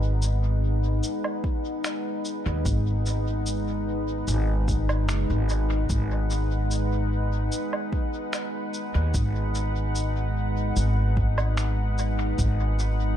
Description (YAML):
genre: ambient dub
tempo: 74 BPM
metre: 4/4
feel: straight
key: G# minor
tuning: A4 = 439 Hz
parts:
  - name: deep dark ambient pad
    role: sustained chords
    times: 0.0-13.2 s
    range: G#3 to F#5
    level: -29 LUFS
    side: left 1 dB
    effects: chorus, built-in reverb
  - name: upright bass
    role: bass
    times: 0.0-13.2 s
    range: F#1 to D#2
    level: -24 LUFS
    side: equal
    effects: tube saturation
  - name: electronic shaker, woodblock and finger snaps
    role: drums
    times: 0.2-13.0 s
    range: none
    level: -34 LUFS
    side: right 1 dB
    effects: dub echo
  - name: electronic kick drum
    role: drums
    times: 1.4-12.6 s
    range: none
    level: -28 LUFS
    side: equal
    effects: none
room: digital ambience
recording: echo-heavy mix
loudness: -23 LUFS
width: side -10 dB against mid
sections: 0.0-13.2 A section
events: none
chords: 0.0 G#m7